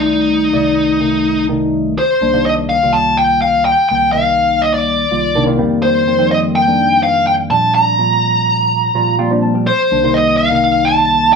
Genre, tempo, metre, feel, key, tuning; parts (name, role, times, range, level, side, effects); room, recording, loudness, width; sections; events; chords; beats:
jazz; 125 BPM; 4/4; straight; C dorian; A4 = 440 Hz
bluesy overdriven lead guitar; melody; 0.0-11.4 s; Eb4 to Bb5; -12 LUFS; equal; distortion
bright tine electric piano; accompaniment; 0.0-11.4 s; C2 to A5; -16 LUFS; equal; phaser
moderate studio reverb, RT60 0.7 s; band playing live in one room; -11 LUFS; side -5 dB against mid
0.0-2.0 A section; 2.0-11.4 B section
tine electric piano fill 8.7-9.7
0.0 Cm69; 2.0 Cm9; 5.6 F9sus4; 7.5 Bb6; 9.7 Cm7
| 0.04 0.52 1.00 1.49 | 1.97 2.45 2.93 3.41 | 3.89 4.38 4.86 5.34 | 5.82 6.30 6.78 7.26 | 7.74 8.22 8.71 9.19 | 9.67 10.15 10.63 11.11